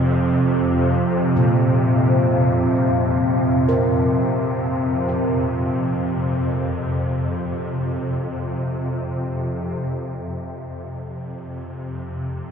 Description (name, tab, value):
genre	dark ambient drone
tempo	free time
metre	none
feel	none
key	unclear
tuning	A4 = 440 Hz
part	deep dark ambient pad	sustained chords	0.0-10.3 s	F3 to F5	-23 LUFS	equal	chorus, built-in reverb
part	gamelan-type bossed gongs	arpeggios	0.0-9.3 s	Bb2 to Bb4	-24 LUFS	equal	tape echo
part	swarming drone	drone	0.0-12.5 s	F2 to C3	-22 LUFS	equal	built-in reverb
room	wet cathedral reverb, RT60 6.0 s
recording	in a vast, echoing space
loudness	-18 LUFS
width	side -7 dB against mid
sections	0.0-10.2 A section; 10.2-12.5 B section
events	none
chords	0.0 F5